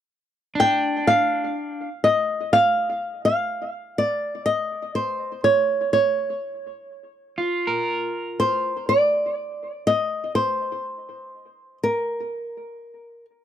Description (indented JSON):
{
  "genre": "folk",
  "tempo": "61 BPM",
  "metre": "4/4",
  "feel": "straight",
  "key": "unclear",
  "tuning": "A4 = 441 Hz",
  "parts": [
    { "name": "flamenco guitar", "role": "melody", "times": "0.6-13.2 s", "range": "Bb4 to G5", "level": "-20 LUFS", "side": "equal", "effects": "tape echo" },
    { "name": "electric guitar at the edge of break-up", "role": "arpeggios", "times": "0.6-9.0 s", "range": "D4 to Bb4", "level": "-25 LUFS", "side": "equal", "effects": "harmonic tremolo" }
  ],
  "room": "moderate booth ambience, RT60 0.2 s",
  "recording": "dry, close 1970s-style studio recording",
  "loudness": "-20 LUFS",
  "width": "side -10 dB against mid",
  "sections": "0.0-13.4 A section",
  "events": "none",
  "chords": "0.0 N.C.; 4.5 Dbmaj13; 12.3 N.C."
}